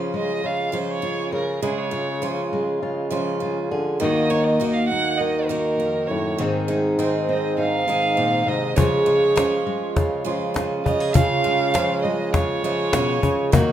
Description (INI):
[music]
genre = acoustic folk duo or small band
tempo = 101 BPM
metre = 4/4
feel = straight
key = unclear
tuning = A4 = 440 Hz
[part]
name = fingerpicked steel-string acoustic guitar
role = accompaniment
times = 0.0-13.7 s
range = Eb2 to Ab4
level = -24 LUFS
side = left 1 dB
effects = none
[part]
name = picked steel-string acoustic guitar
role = arpeggios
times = 0.0-13.7 s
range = Eb3 to Ab4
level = -28 LUFS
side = right 7 dB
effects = none
[part]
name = dark bassoon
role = bass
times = 0.0-13.7 s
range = Ab2 to Eb3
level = -25 LUFS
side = equal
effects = none
[part]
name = dark fiddle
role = second line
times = 0.2-13.7 s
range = Ab4 to Gb5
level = -25 LUFS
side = right 3 dB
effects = none
[part]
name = cajon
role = percussion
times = 8.8-13.7 s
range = none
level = -21 LUFS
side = left 2 dB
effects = none
[sound]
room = moderate large studio reverb, RT60 1.0 s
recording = minimal, uncompressed stereo recording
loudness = -19 LUFS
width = side -11 dB against mid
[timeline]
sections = 0.0-13.7 A section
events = fiddle solo 0.0-13.7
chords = 0.0 Db; 4.0 Ebm; 6.4 Ab; 8.8 Db